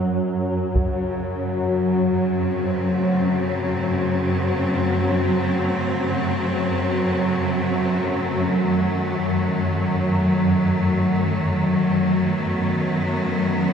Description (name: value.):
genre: dark ambient drone.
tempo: free time.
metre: none.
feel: none.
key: unclear.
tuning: A4 = 439 Hz.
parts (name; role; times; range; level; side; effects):
swarming drone; drone; 0.0-13.7 s; F#2 to F#3; -20 LUFS; equal; built-in reverb.
bright symphonic cello section; sustained chords; 0.7-13.7 s; C#3 to B#3; -24 LUFS; equal; none.
taiko ensemble; percussion; 0.8-1.0 s; none; -23 LUFS; equal; low-pass filter on perc.
room: wet huge ambient reverb, RT60 9.2 s.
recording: in a vast, echoing space.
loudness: -19 LUFS.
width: side -7 dB against mid.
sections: 0.0-13.7 A section.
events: none.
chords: 0.0 N.C.; 0.7 F#m; 8.7 B.